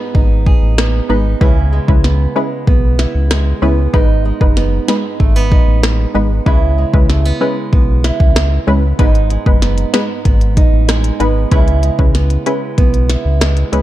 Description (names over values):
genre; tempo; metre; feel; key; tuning
dancehall; 95 BPM; 4/4; straight; C# minor; A4 = 439 Hz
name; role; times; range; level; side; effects
fingerpicked acoustic archtop guitar; arpeggios; 0.0-13.8 s; G#2 to G#4; -20 LUFS; right 5 dB; none
sub bass with octave; bass; 0.1-13.8 s; F#1 to C#2; -14 LUFS; equal; none
minimal click drum kit; drums; 0.1-13.8 s; hi-hat, kick drum, rim click, snare drum; -13 LUFS; equal; none
punchy chord stab; accompaniment; 1.1-13.8 s; G#3 to B4; -19 LUFS; left 1 dB; chorus, sidechain pumping
room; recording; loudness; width
little or no reverb; dark, warm production; -11 LUFS; side -14 dB against mid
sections
0.0-13.8 A section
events
break 0.0-9.0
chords
0.0 G#m; 1.4 C#m7; 3.9 G#m; 6.5 C#m7; 9.0 G#m; 11.5 C#m7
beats
0.15 0.78 | 1.41 2.04 2.67 3.31 | 3.94 4.57 5.20 5.83 | 6.46 7.09 7.73 8.36 | 8.99 9.62 10.25 10.88 | 11.52 12.15 12.78 13.41